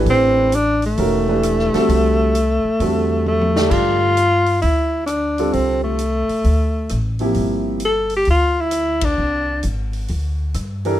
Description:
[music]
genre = modal jazz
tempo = 132 BPM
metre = 4/4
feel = swing 66% on 8ths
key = A dorian, G dorian from 3.7 s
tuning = A4 = 440 Hz
[part]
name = clear baby grand piano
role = accompaniment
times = 0.0-7.8, 10.8-11.0 s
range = C3 to D5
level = -20 LUFS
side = right 2 dB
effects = none
[part]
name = upright bass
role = bass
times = 0.0-11.0 s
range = E1 to G2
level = -21 LUFS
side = equal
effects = none
[part]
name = breathy tenor saxophone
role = melody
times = 0.1-9.7 s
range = A3 to A4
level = -18 LUFS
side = left 1 dB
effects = none
[part]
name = swinging big-band drum kit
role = drums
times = 0.1-10.9 s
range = crash cymbal, hi-hat, kick drum, ride cymbal, rim click, snare drum, toms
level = -29 LUFS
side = left 1 dB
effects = none
[sound]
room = light reverb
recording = minimal, uncompressed stereo recording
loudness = -15 LUFS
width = side -12 dB against mid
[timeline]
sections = 0.0-3.7 A section; 3.7-11.0 B section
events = drum fill 3.3-3.7; band accent 9.0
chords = 0.0 Am11; 3.7 G9sus4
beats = | 0.07 0.53 0.98 1.44 | 1.89 2.35 2.80 3.26 | 3.71 4.17 4.62 5.08 | 5.54 5.99 6.45 6.90 | 7.36 7.82 8.27 8.73 | 9.18 9.64 10.10 10.55

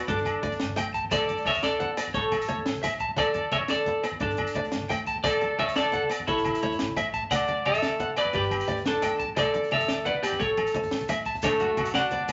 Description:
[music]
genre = highlife guitar band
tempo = 116 BPM (dotted quarters)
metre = 12/8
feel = straight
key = D major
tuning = A4 = 440 Hz
[part]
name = semi-hollow electric guitar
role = melody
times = 0.0-12.3 s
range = D4 to F#5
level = -29 LUFS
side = equal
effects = none
[part]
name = clear trumpet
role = second line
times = 0.0-12.3 s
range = A3 to D5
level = -34 LUFS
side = equal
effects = none
[part]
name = picked swing-style acoustic guitar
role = accompaniment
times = 0.0-12.3 s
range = A3 to B3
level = -40 LUFS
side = equal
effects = none
[part]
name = electric guitar at the edge of break-up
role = arpeggios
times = 0.1-12.2 s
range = D4 to A5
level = -35 LUFS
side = equal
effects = spring reverb
[part]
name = upright bass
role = bass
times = 0.1-12.3 s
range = G1 to E2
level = -42 LUFS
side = equal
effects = none
[part]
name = compact cocktail drum kit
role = drums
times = 0.1-12.3 s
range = hi-hat, kick drum, snare drum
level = -38 LUFS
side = equal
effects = none
[part]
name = congas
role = percussion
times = 0.1-12.3 s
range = none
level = -40 LUFS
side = equal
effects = none
[part]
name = maracas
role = percussion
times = 0.2-12.3 s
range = none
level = -47 LUFS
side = equal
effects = none
[part]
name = agogo bells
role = percussion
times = 0.3-12.3 s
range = none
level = -37 LUFS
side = equal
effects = none
[sound]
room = moderate studio reverb, RT60 0.7 s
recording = vinyl crackle, nothing above 7.7 kHz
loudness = -27 LUFS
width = mono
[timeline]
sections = 0.0-11.4 A section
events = none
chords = 0.1 Gsus2; 1.1 D5; 2.1 A; 3.2 D5; 4.2 Gsus2; 5.2 D5; 6.3 A; 7.3 D; 8.3 Gsus2; 9.4 D5; 10.4 A; 11.4 Dmaj7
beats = 0.09 0.60 | 1.12 1.63 2.15 2.67 | 3.18 3.70 4.21 4.73 | 5.25 5.76 6.28 6.79 | 7.31 7.82 8.34 8.86 | 9.37 9.89 10.40 10.92 | 11.43 11.95

